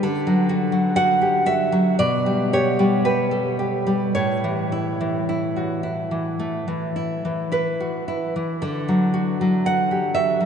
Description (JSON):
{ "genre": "romantic piece for solo classical guitar", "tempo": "53-64 BPM", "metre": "4/4", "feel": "rubato", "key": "D major", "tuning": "A4 = 441 Hz", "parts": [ { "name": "nylon-string guitar", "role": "solo", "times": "0.0-10.5 s", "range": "A2 to F#5", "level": "-19 LUFS", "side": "equal", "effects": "none" } ], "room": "wet cathedral reverb, RT60 7.5 s", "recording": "in a vast, echoing space, nothing above 10.3 kHz", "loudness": "-19 LUFS", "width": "side -7 dB against mid", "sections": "0.0-10.5 A section", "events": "none", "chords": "0.1 D; 2.0 G/B; 4.2 A; 8.6 D" }